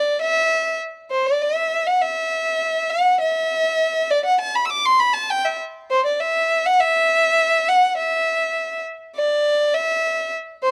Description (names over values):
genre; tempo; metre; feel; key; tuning
indian classical; 101 BPM; 4/4; straight; unclear; A4 = 438 Hz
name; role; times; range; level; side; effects
rich violin; solo; 0.0-10.7 s; C5 to E6; -20 LUFS; equal; none
room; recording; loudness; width
small room ambience; dry, close 1970s-style studio recording; -20 LUFS; mono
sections
0.0-10.7 A section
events
none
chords
none